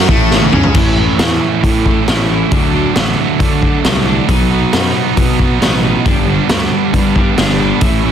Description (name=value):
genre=quiet-loud alternative rock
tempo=136 BPM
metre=4/4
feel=straight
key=A mixolydian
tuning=A4 = 441 Hz
part: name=distorted electric guitar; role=riff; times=0.0-0.8 s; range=A2 to C#4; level=-16 LUFS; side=left 14 dB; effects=overdrive
part: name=thick fuzz guitar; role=riff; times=0.0-8.1 s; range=G2 to E4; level=-16 LUFS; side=right 11 dB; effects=distortion
part: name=fuzz fingered electric bass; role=bass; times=0.0-8.1 s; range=G1 to D3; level=-17 LUFS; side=left 1 dB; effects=overdrive
part: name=raw garage drum kit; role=drums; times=0.1-7.9 s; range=crash cymbal, hi-hat, kick drum, snare drum, toms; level=-14 LUFS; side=left 1 dB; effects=none
part: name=twelve-string electric guitar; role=arpeggios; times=0.7-8.1 s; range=G2 to E4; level=-19 LUFS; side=left 11 dB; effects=phaser
room=light reverb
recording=dense, heavily limited modern master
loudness=-10 LUFS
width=side -9 dB against mid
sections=0.8-8.1 A section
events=drum fill 0.3-0.8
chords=0.0 A; 2.5 D; 4.3 B; 6.1 G